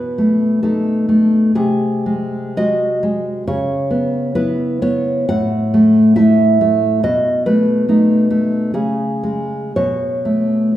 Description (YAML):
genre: romantic piece for solo classical guitar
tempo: 57-71 BPM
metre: 2/4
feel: rubato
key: unclear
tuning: A4 = 437 Hz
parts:
  - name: nylon-string guitar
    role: solo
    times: 0.0-10.7 s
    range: A2 to F#5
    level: -13 LUFS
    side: equal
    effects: none
room: wet recital hall reverb, RT60 1.5 s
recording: recorded in a church or concert hall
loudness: -13 LUFS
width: side -13 dB against mid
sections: 0.0-10.8 A section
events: none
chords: 0.0 B7; 1.6 G#7/B#; 3.5 C#m7; 5.3 F#m7/A; 7.0 B7; 8.8 C#5; 9.8 Aadd9/B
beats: 0.64 | 1.55 2.56 | 3.47 4.35 | 5.29 6.17 | 7.03 7.88 | 8.76 9.76